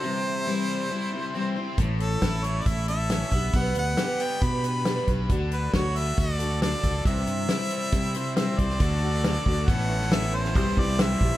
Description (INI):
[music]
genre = folk rock and heartland rock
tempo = 137 BPM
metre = 4/4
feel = straight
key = unclear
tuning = A4 = 442 Hz
[part]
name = clear harmonica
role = melody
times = 0.0-11.4 s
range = A4 to B5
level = -30 LUFS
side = right 1 dB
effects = tape echo
[part]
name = picked steel-string acoustic guitar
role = accompaniment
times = 0.0-11.4 s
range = A2 to C5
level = -31 LUFS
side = left 2 dB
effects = none
[part]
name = biting overdriven guitar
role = riff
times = 0.0-11.4 s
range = A2 to C5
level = -34 LUFS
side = equal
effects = none
[part]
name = fingered electric bass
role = bass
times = 1.8-11.3 s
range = A1 to C3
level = -27 LUFS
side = equal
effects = none
[part]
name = natural country drum kit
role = drums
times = 1.8-11.3 s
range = hi-hat, kick drum, snare drum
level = -26 LUFS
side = equal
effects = none
[sound]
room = light reverb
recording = dark, warm production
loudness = -23 LUFS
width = side -14 dB against mid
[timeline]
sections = 0.0-8.8 A section; 8.8-11.4 B section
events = none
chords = 0.0 C; 1.8 A; 3.3 G/B; 5.3 D; 7.1 C; 8.8 D; 9.7 Aadd9; 10.6 C